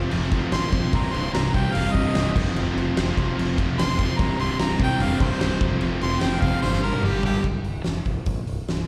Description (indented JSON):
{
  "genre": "classic rock",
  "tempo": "147 BPM",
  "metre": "4/4",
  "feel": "straight",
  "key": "C dorian",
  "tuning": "A4 = 440 Hz",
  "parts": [
    { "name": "bright tonewheel organ", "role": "sustained chords", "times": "0.0-7.4 s", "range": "G3 to C5", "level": "-40 LUFS", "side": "equal", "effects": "none" },
    { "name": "overdriven electric guitar", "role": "riff", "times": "0.0-7.4 s", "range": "C2 to G3", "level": "-32 LUFS", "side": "equal", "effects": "none" },
    { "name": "overdriven electric guitar", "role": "riff", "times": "0.0-7.4 s", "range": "C2 to G3", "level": "-33 LUFS", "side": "equal", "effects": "none" },
    { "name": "sludgy distorted guitar", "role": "riff", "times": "0.0-7.4 s", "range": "C2 to G3", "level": "-30 LUFS", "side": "equal", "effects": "overdrive" },
    { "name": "growling fingered electric bass", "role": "bass", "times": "0.0-8.8 s", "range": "C1 to C2", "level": "-30 LUFS", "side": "equal", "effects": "overdrive" },
    { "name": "huge arena drum kit", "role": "drums", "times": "0.1-8.8 s", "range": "crash cymbal, hi-hat, kick drum, snare drum, toms", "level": "-28 LUFS", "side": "equal", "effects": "none" },
    { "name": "clear harmonica", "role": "melody", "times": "0.5-7.4 s", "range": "G4 to C6", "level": "-30 LUFS", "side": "equal", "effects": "slapback echo, plate reverb" }
  ],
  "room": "moderate club reverb, RT60 0.5 s",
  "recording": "live gig heard through the venue's PA, recital hall reverb",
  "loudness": "-23 LUFS",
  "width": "mono",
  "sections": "0.0-7.5 A section; 7.5-8.9 B section",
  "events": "harmonica solo 0.0-7.5; drum fill 6.6-7.5",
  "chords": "0.0 F; 0.9 Cm; 2.4 F; 4.2 Cm; 5.6 F; 6.6 Gm7; 7.5 C5",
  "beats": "0.11 0.52 | 0.93 1.33 1.74 2.15 | 2.56 2.96 3.37 3.78 | 4.18 4.59 5.00 5.41 | 5.82 6.22 6.63 7.04 | 7.45 7.86 8.27 8.68"
}